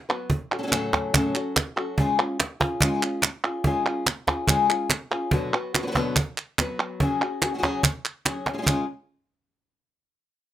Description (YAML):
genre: flamenco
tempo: 143 BPM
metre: 4/4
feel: straight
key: C# phrygian dominant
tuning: A4 = 440 Hz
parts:
  - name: flamenco guitar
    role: melody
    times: 0.1-8.8 s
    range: A2 to B4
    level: -26 LUFS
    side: left 3 dB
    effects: none
  - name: cajon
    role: percussion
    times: 0.1-8.8 s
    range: none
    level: -25 LUFS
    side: right 1 dB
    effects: none
  - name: palmas hand claps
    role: percussion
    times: 0.1-8.8 s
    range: none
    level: -23 LUFS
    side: right 3 dB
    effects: none
room: light reverb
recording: rough home demo mix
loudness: -22 LUFS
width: side -12 dB against mid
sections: 0.0-8.7 A section; 8.7-10.3 B section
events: drum fill 8.5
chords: 0.3 F#m/A; 2.0 C#; 5.3 Bm; 7.0 C#sus4; 8.7 N.C.